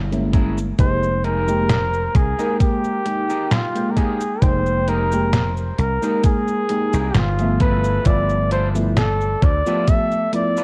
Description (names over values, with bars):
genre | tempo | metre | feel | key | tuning
vaporwave | 66 BPM | 4/4 | swing 53% on 16ths | F minor | A4 = 440 Hz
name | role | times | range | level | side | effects
dry thumbed slap bass | bass | 0.0-9.6 s | F1 to D2 | -24 LUFS | equal | none
mellow FM electric piano | accompaniment | 0.1-10.6 s | F3 to G5 | -26 LUFS | equal | analog chorus, cassette tape
detuned 8-bit digital drum machine | drums | 0.1-10.6 s | cabasa, hi-hat, snare drum | -26 LUFS | equal | studio reverb
electric guitar at the edge of break-up | riff | 0.3-10.6 s | Db4 to D5 | -35 LUFS | equal | analog chorus, vintage 12-bit sampler grit, analog delay
electronic kick drum | drums | 0.3-10.1 s | none | -20 LUFS | equal | studio reverb
warm flugelhorn | melody | 0.8-10.6 s | F4 to E5 | -24 LUFS | equal | tape echo
room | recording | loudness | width
light reverb, digital ambience | worn, warbling old tape, cassette tape, warbly pitch drift | -19 LUFS | mono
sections
0.0-10.6 A section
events
none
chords
0.0 Gdim7; 0.8 Fm11; 7.6 G13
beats
| 0.79 1.70 2.61 3.52 | 4.42 5.33 6.24 7.15 | 8.06 8.97 9.88